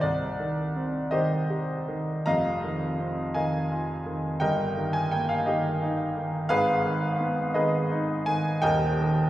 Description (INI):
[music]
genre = classical, romantic character piece for solo piano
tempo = 56 BPM (dotted quarters)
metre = 6/8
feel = rubato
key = Eb major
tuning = A4 = 440 Hz
[part]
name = clear upright piano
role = solo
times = 0.0-9.3 s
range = Eb1 to Bb5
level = -24 LUFS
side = equal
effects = none
[sound]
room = wet recital hall reverb, RT60 1.6 s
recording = heard from further back in the room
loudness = -24 LUFS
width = side -14 dB against mid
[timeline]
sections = 0.0-9.3 A section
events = none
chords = 0.0 Cm; 2.3 Fm7; 4.4 Eb/G; 6.5 Abm; 8.6 Eb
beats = | 0.04 1.12 | 2.27 3.35 | 4.42 5.47 | 6.51 7.56 | 8.63